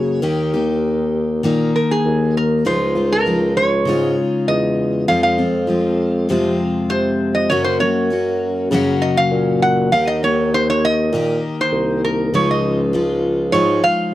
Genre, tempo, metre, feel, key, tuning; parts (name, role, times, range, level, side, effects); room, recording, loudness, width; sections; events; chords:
acoustic folk duo or small band; 99 BPM; 4/4; straight; A4 = 440 Hz
metal-body resonator slide guitar; melody; 0.0-14.1 s; Ab4 to Gb5; -19 LUFS; right 2 dB
picked steel-string acoustic guitar; accompaniment; 0.0-14.1 s; F2 to G4; -19 LUFS; left 3 dB
dark bassoon; bass; 0.0-13.8 s; C2 to Db3; -20 LUFS; right 1 dB
little or no reverb; dry, close 1970s-style studio recording; -15 LUFS; side -14 dB against mid
0.0-14.1 A section
resonator guitar played with a steel bar solo 0.0-14.1
0.2 Eb; 2.7 Dbadd9; 5.1 Fm; 7.5 Gb; 9.9 Eb; 12.3 Dbadd9